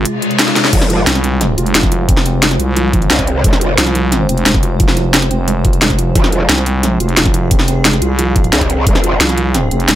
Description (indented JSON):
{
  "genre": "dark technical drum and bass",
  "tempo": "177 BPM",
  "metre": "4/4",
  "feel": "straight",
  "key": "F minor",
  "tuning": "A4 = 440 Hz",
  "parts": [
    { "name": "swarming drone", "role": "sustained chords", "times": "0.0-10.0 s", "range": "C3 to C5", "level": "-21 LUFS", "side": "left 1 dB", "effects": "built-in reverb, sidechain pumping" },
    { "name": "growling FM bass", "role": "bass", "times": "0.0-10.0 s", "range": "F1 to C2", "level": "-16 LUFS", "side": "equal", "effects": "none" },
    { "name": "drum and bass drum kit", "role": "drums", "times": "0.1-10.0 s", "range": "crash cymbal, hi-hat, snare drum", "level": "-14 LUFS", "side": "equal", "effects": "overdrive" },
    { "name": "reverse cymbal", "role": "sound effects", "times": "0.1-0.7 s", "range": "none", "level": "-20 LUFS", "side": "left 5 dB", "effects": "none" },
    { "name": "felt-muted upright piano", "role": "arpeggios", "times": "0.7-9.9 s", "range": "F3 to F4", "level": "-20 LUFS", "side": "right 3 dB", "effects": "sidechain pumping, dub echo" },
    { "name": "growl bass", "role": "bass", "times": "0.7-1.1, 3.1-3.8, 6.2-6.5, 8.5-9.2 s", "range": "F1 to C2", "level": "-15 LUFS", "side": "equal", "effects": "chorus, overdrive" },
    { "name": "electronic kick drum", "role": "drums", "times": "0.7-8.9 s", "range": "none", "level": "-14 LUFS", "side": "equal", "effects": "overdrive" }
  ],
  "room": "digital ambience",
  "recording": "none",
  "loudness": "-10 LUFS",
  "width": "side -13 dB against mid",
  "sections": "0.0-10.0 A section",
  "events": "break 0.1-0.7; reverse cymbal 0.1-0.7; drum fill 0.5",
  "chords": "0.0 Fm"
}